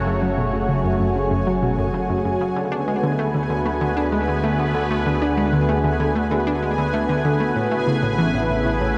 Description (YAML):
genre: ambient, sequencer-driven space music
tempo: 96 BPM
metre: 4/4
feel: straight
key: unclear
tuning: A4 = 440 Hz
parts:
  - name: sweeping resonant pad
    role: sustained chords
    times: 0.0-9.0 s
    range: C#3 to C#5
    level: -24 LUFS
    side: equal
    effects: chorus, shimmer reverb
  - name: fat analog bass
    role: bass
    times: 0.0-9.0 s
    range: F#1 to D2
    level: -30 LUFS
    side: equal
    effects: none
  - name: bubbling stepped-filter texture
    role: texture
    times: 0.0-9.0 s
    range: G#4 to G#5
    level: -31 LUFS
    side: equal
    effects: chorus, built-in reverb, shimmer reverb
  - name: analog pluck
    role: riff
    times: 0.1-8.9 s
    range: F#2 to D4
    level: -25 LUFS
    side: equal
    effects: chorus, delay, shimmer reverb
room: wet huge ambient reverb, RT60 8.7 s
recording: nothing above 10.9 kHz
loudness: -21 LUFS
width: mono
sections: 0.0-9.0 A section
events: none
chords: 0.0 F#m; 2.6 D6; 7.6 Aadd9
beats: | 0.06 0.69 1.31 1.94 | 2.56 3.19 3.81 4.44 | 5.06 5.69 6.31 6.94 | 7.56 8.19 8.81